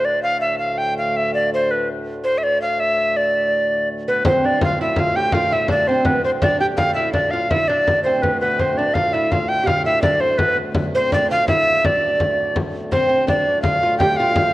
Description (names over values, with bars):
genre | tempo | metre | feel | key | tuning
medieval dance | 166 BPM | 3/4 | straight | D dorian | A4 = 438 Hz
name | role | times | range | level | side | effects
tenor recorder | melody | 0.0-14.5 s | B4 to G5 | -18 LUFS | equal | none
hand-pumped harmonium | drone | 0.0-14.5 s | D2 to A2 | -28 LUFS | equal | none
lute | second line | 4.1-14.5 s | B3 to G4 | -24 LUFS | right 2 dB | none
frame drum | percussion | 4.2-14.5 s | none | -23 LUFS | left 1 dB | none
room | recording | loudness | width
wet scoring stage reverb, RT60 1.7 s | worn, warbling old tape, cassette tape, warbly pitch drift | -16 LUFS | side -16 dB against mid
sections
0.0-4.2 A section; 4.2-12.9 A section; 12.9-14.5 B section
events
none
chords
none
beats
0.23 0.60 | 0.96 1.33 1.69 | 2.06 2.42 2.78 | 3.15 3.51 3.88 | 4.24 4.60 4.97 | 5.33 5.69 6.06 | 6.42 6.78 7.14 | 7.51 7.87 8.23 | 8.59 8.96 9.32 | 9.68 10.04 10.40 | 10.76 11.12 11.48 | 11.84 12.20 12.56 | 12.92 13.28 13.64 | 14.00 14.36